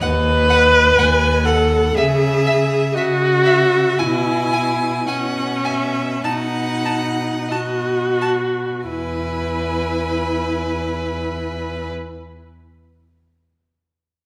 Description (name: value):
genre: classical, slow romantic movement for string quartet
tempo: 42-64 BPM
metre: 4/4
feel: rubato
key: E major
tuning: A4 = 440 Hz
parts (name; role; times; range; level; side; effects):
- rich violin; melody; 0.0-11.9 s; D#5 to G#5; -29 LUFS; equal; none
- rich violin; second line; 0.0-11.9 s; B4 to A5; -28 LUFS; equal; none
- warm viola; accompaniment; 0.0-11.9 s; C#4 to B4; -20 LUFS; equal; none
- rich cello; bass; 0.0-11.9 s; D#2 to C#3; -25 LUFS; equal; none
room: wet recital hall reverb, RT60 1.7 s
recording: none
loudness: -18 LUFS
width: mono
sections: 0.0-8.9 A section; 8.9-14.2 B section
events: slowing down 0.0-8.9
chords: 0.0 B/D#; 1.9 C#m; 4.0 E/B; 6.2 B; 8.9 E